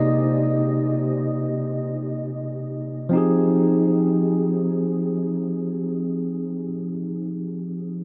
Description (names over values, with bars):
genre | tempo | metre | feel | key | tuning
R&B | free time | none | none | F minor | A4 = 440 Hz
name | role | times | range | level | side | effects
tine electric piano | solo | 0.0-8.0 s | C3 to Eb5 | -23 LUFS | equal | tape echo
room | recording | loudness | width
wet huge ambient reverb, RT60 9.1 s | dreamy mix soaked in reverb | -23 LUFS | mono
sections
0.0-3.1 A section; 3.1-6.7 B section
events
tine electric piano solo 0.0-3.1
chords
0.0 Cm7; 3.1 Fm7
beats
free time